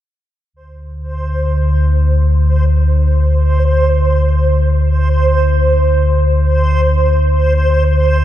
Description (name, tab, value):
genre	dark ambient drone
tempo	free time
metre	none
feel	none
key	unclear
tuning	A4 = 440 Hz
part	deep rumbling drone	drone	0.9-8.2 s	D2 to D3	-12 LUFS	equal	built-in reverb
part	backwards swelling texture	texture	1.1-8.2 s	C5	-17 LUFS	right 1 dB	built-in reverb
room	moderate huge ambient reverb, RT60 8.6 s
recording	dark, warm production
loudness	-11 LUFS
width	side -12 dB against mid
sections	0.5-8.2 A section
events	none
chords	0.5 Csus2/D